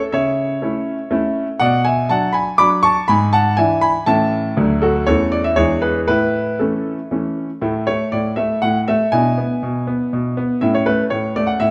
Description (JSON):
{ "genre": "classical-period piano sonatina", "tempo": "121 BPM", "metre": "3/4", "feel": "straight", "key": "A major", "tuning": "A4 = 440 Hz", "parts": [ { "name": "clear grand piano", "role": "solo", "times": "0.0-11.7 s", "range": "D2 to D6", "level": "-18 LUFS", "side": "equal", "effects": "none" } ], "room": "moderate recital hall reverb, RT60 1.6 s", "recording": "close, detailed microphones", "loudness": "-18 LUFS", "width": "mono", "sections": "0.0-7.6 A section; 7.6-11.7 A section", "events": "none", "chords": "0.1 A/C#; 1.6 Bm; 3.1 E7/G#; 4.1 A; 4.6 D; 5.1 A/E; 5.6 E7; 6.1 A; 7.6 A5; 9.1 E7/B; 10.6 A" }